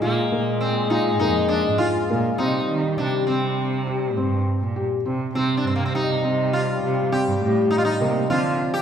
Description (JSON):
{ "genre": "contemporary instrumental, chamber music in an uneven meter", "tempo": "101 BPM", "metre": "5/4", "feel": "straight", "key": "C minor, C dorian from 5.4 s", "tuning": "A4 = 440 Hz", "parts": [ { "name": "sitar", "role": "melody", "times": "0.0-8.8 s", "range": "Bb3 to G4", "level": "-25 LUFS", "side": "right 1 dB", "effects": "none" }, { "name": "mellow French horn", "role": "second line", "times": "0.0-8.8 s", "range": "F3 to Ab3", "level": "-26 LUFS", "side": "left 4 dB", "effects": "none" }, { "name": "felt-muted upright piano", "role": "arpeggios", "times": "0.0-8.7 s", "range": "Bb3 to G4", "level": "-26 LUFS", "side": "left 2 dB", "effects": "none" }, { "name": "rich cello", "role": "bass", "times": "0.0-8.5 s", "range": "F2 to Eb3", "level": "-25 LUFS", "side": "right 4 dB", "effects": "none" } ], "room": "wet scoring stage reverb, RT60 1.9 s", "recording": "recorded in a church or concert hall", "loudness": "-19 LUFS", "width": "side -8 dB against mid", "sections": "0.0-5.4 A section; 5.4-8.8 B section", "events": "none", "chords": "0.0 Bb7(no3); 2.4 C5; 5.4 Cm; 8.3 Dm7" }